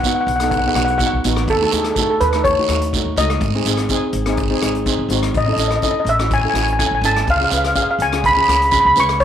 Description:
calypso; 124 BPM; 4/4; straight; A4 = 439 Hz
steel pan; melody; 0.0-9.2 s; A4 to C#6; -16 LUFS; equal; slapback echo
steel pan; accompaniment; 0.0-9.2 s; A3 to B4; -22 LUFS; right 1 dB
unplugged drum kit; drums; 0.0-9.2 s; hi-hat, kick drum, rim click; -25 LUFS; left 2 dB
guiro; percussion; 0.0-9.2 s; -26 LUFS; right 13 dB
upright bass; bass; 0.3-9.2 s; G#1 to F#2; -22 LUFS; equal
wet spring reverb, RT60 1.2 s, small room ambience; 1960s-style stereo; -14 LUFS; side -9 dB against mid
0.0-9.2 A section
0.0 B7; 1.5 D#m7b5; 3.4 G#; 5.3 Amaj7; 7.3 C#7

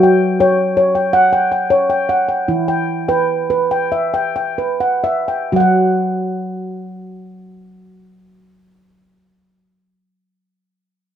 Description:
world meditative, meditative tuned percussion; 124-164 BPM (eighths); 7/8; straight; A4 = 442 Hz
handpan; solo; 0.0-9.1 s; E3 to G5; -14 LUFS; equal
moderate studio reverb, RT60 0.6 s; rough home demo mix; -14 LUFS; side -9 dB against mid
0.0-5.5 A section; 5.5-8.9 B section
slowing down 0.0-5.5
0.0 F#5; 2.5 E5; 5.5 N.C.

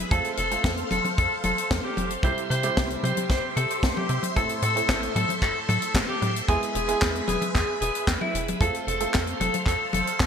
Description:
italo disco; 113 BPM; 4/4; straight; A4 = 440 Hz
phased string machine; sustained chords; 0.0-10.3 s; G4 to C6; -32 LUFS; equal; ensemble chorus, phaser
clear baby grand piano; stabs; 0.0-10.3 s; A2 to A4; -33 LUFS; right 6 dB
tight sequencer bass; bass; 0.0-10.3 s; E1 to C3; -29 LUFS; equal
raspy alto saxophone; melody; 0.1-10.2 s; E4 to C5; -27 LUFS; left 1 dB; vintage 12-bit sampler grit, ping-pong delay
kick drum; drums; 0.1-10.3 s; -26 LUFS; equal
tight funk drum kit; drums; 0.1-10.3 s; handclaps, hi-hat, snare drum, toms; -28 LUFS; left 2 dB; gated reverb
moderate plate reverb, RT60 1.7 s, studio ambience; bright 1980s-style digital production; -22 LUFS; side -7 dB against mid
0.0-10.3 A section
0.1 F; 2.2 C; 4.4 Am; 6.5 E; 8.6 F

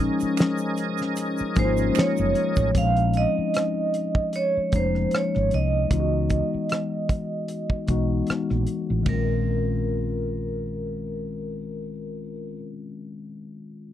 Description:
R&B, neo-soul; 76 BPM; 4/4; swing 55% on 16ths; Bb minor; A4 = 440 Hz
vibraphone with medium hard mallets; melody; 0.0-12.6 s; Db4 to F5; -27 LUFS; right 3 dB
mellow tine electric piano; accompaniment; 0.0-13.9 s; Eb3 to C5; -27 LUFS; left 6 dB; phaser
tonewheel organ; sustained chords; 0.0-2.7 s; Db4 to Eb5; -31 LUFS; right 3 dB; fast rotary speaker, chorus vibrato
woody fretless electric bass; bass; 0.0-12.6 s; F1 to Db2; -26 LUFS; right 1 dB; lush chorus
cloth-damped thuddy drum kit; drums; 0.2-9.3 s; hi-hat, kick drum, ride cymbal, rim click, snare drum; -23 LUFS; right 1 dB
tube shaker and finger snaps; percussion; 0.2-2.7 s; -38 LUFS; right 27 dB
little or no reverb; dry, close 1970s-style studio recording; -22 LUFS; side -11 dB against mid
0.0-2.7 A section; 2.7-9.1 B section; 9.1-12.2 C section
0.0 Bbm11; 5.9 Dbm11; 9.1 Bbm11

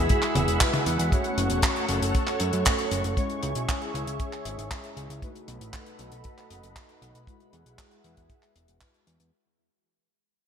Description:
italo disco; 117 BPM; 4/4; straight; A4 = 440 Hz
string machine, full ensemble; sustained chords; 0.0-9.3 s; G#4 to C#6; -31 LUFS; right 1 dB; phaser, ensemble chorus
analog synth brass; stabs; 0.0-9.3 s; G#3 to C#5; -33 LUFS; left 1 dB; chorus, digital delay
fat analog bass; bass; 0.0-9.3 s; E1 to F#2; -31 LUFS; equal; digital delay
damped 70s drum kit; drums; 0.1-9.3 s; handclaps, hi-hat, toms; -28 LUFS; left 1 dB; gated reverb
kick drum; drums; 0.1-8.9 s; -26 LUFS; equal
moderate lush hall reverb, RT60 2.5 s; bright 1980s-style digital production; -23 LUFS; side -8 dB against mid
0.0-9.3 A section
fade-out 0.0-9.3; filter sweep on analog polysynth 0.0-9.3; filter sweep on string machine 0.0-9.3
0.0 Eadd9; 1.1 F#m; 3.2 C#m; 5.2 B7; 7.3 Eadd9

